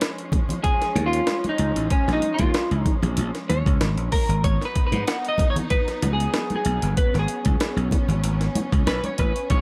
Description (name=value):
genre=funk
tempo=95 BPM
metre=4/4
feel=straight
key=G# dorian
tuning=A4 = 440 Hz
part: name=clear studio string section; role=sustained chords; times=0.0-9.6 s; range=E#3 to E#4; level=-35 LUFS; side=equal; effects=none
part: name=breakbeat sampler-style drum kit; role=drums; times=0.0-9.6 s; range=hi-hat, kick drum, snare drum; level=-26 LUFS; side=equal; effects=none
part: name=congas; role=percussion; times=0.3-9.6 s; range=none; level=-32 LUFS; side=equal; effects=none
part: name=semi-hollow electric guitar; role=accompaniment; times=0.6-9.6 s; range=C#4 to F#5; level=-28 LUFS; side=equal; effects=lush chorus
part: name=slap bass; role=bass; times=1.0-9.6 s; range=G1 to G#2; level=-25 LUFS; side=equal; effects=none
room=light reverb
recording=none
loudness=-22 LUFS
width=mono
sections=0.0-9.6 A section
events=clean electric guitar solo 0.0-9.6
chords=0.0 A#m7; 4.4 G#m7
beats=0.01 0.64 1.27 | 1.91 2.54 3.18 3.81 | 4.44 5.08 5.71 6.34 | 6.97 7.61 8.24 8.87 | 9.50